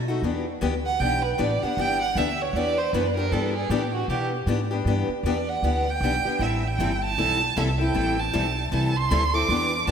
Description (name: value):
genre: acoustic string swing (jazz manouche)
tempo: 156 BPM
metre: 4/4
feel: swing 61% on 8ths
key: E minor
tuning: A4 = 440 Hz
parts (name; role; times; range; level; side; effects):
- upright bass; bass; 0.0-9.9 s; G1 to B2; -27 LUFS; equal; none
- picked steel-string acoustic guitar; accompaniment; 0.1-9.9 s; E3 to A4; -27 LUFS; left 4 dB; none
- warm violin; second line; 0.9-9.9 s; F#4 to D6; -25 LUFS; right 4 dB; none
room: wet lush hall reverb, RT60 2.8 s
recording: dreamy mix soaked in reverb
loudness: -22 LUFS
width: side -7 dB against mid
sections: 0.2-9.9 A section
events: violin solo 0.2-9.9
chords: 0.2 Em7; 6.4 Am7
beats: | 0.24 0.63 1.01 1.40 | 1.78 2.17 2.56 2.94 | 3.33 3.71 4.10 4.49 | 4.87 5.26 5.64 6.03 | 6.42 6.80 7.19 7.57 | 7.96 8.34 8.73 9.12 | 9.50 9.89